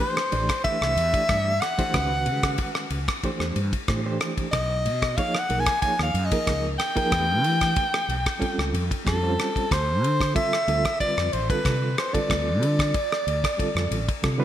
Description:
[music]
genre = electric jazz fusion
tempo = 93 BPM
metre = 4/4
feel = straight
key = D dorian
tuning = A4 = 442 Hz
[part]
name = clear soprano saxophone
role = melody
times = 0.0-14.2 s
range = A4 to G#5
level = -25 LUFS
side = equal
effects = none
[part]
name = barky reed electric piano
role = accompaniment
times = 0.0-14.4 s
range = D3 to D5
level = -30 LUFS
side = right 3 dB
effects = overdrive, tremolo
[part]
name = damped 70s drum kit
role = drums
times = 0.0-14.4 s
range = kick drum, ride cymbal, rim click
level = -27 LUFS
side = equal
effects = gated reverb
[part]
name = mellow fretless electric bass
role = bass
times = 0.3-14.4 s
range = A1 to E3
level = -26 LUFS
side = equal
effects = wide subtle chorus
[sound]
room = light reverb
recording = bright 1980s-style digital production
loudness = -21 LUFS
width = side -11 dB against mid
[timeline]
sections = 0.0-14.4 A section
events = none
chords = 0.0 Am9; 1.9 C#9sus4; 3.2 C; 4.5 B69; 7.1 Em7; 8.4 A7alt; 9.7 Dm7

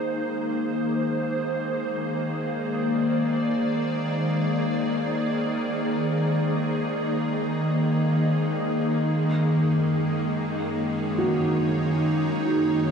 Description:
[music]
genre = ambient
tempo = free time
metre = none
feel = none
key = Ab lydian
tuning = A4 = 440 Hz
[part]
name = evolving wavetable pad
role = sustained chords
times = 0.0-12.9 s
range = Gb2 to D5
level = -23 LUFS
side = equal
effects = ensemble chorus, built-in reverb
[part]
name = bowed-like drone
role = drone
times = 0.0-12.9 s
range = Ab3 to Eb4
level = -33 LUFS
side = equal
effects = built-in reverb
[part]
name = felt-muted upright piano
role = arpeggios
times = 11.2-12.9 s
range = Gb4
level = -30 LUFS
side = right 1 dB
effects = diffuse ambient delay
[sound]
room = wet concert hall reverb, RT60 2.1 s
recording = dark, warm production, nothing above 10.9 kHz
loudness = -22 LUFS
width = side -6 dB against mid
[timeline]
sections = 0.0-12.9 A section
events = fade-in on synth drone 0.0-12.9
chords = 0.0 Abadd9; 9.1 Gbadd9

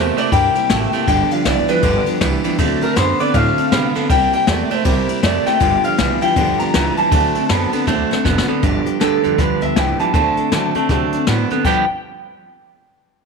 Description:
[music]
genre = rockabilly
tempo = 159 BPM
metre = 4/4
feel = swing 62% on 8ths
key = G mixolydian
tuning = A4 = 439 Hz
[part]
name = electric guitar through a small old amp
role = melody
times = 0.0-11.9 s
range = A4 to Bb5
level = -19 LUFS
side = left 2 dB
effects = lush chorus, tape echo
[part]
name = picked steel-string acoustic guitar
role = accompaniment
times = 0.0-11.8 s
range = G2 to A4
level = -23 LUFS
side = left 11 dB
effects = none
[part]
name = twangy electric guitar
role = riff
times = 0.0-11.8 s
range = G2 to G4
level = -20 LUFS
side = right 14 dB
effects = none
[part]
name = upright bass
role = bass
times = 0.0-11.9 s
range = F#1 to D3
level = -22 LUFS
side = equal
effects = none
[part]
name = jazz brush drum kit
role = drums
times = 0.2-11.8 s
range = crash cymbal, hi-hat, kick drum, ride cymbal, snare drum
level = -21 LUFS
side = left 3 dB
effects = none
[sound]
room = moderate echo chamber reverb, RT60 1.7 s, studio ambience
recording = 1960s-style stereo with parts hard left and right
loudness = -14 LUFS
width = side -4 dB against mid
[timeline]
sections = 0.0-8.6 A section; 8.6-11.7 B section; 11.7-13.2 C section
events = drum fill 7.9-8.6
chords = 0.0 C7; 1.1 G7; 2.6 D7; 4.1 C7; 5.6 G7; 7.1 D7; 8.6 G7; 10.1 D7; 11.7 G7

